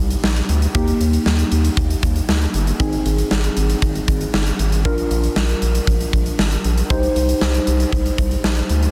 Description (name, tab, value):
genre	synth-pop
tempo	117 BPM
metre	4/4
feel	straight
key	Eb major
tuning	A4 = 440 Hz
part	muted felt-like synth keys	accompaniment	0.0-8.9 s	Bb3 to C5	-26 LUFS	equal	chorus
part	round analog bass	bass	0.0-8.9 s	G1 to Eb2	-21 LUFS	equal	none
part	huge arena drum kit	drums	0.1-8.9 s	hi-hat, kick drum, snare drum	-22 LUFS	equal	none
room	moderate small room reverb, RT60 0.6 s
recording	dense, heavily limited modern master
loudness	-18 LUFS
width	mono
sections	0.0-8.9 A section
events	none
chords	0.0 Cm; 0.7 Eb; 2.8 Ab; 4.9 Bb; 6.9 Cm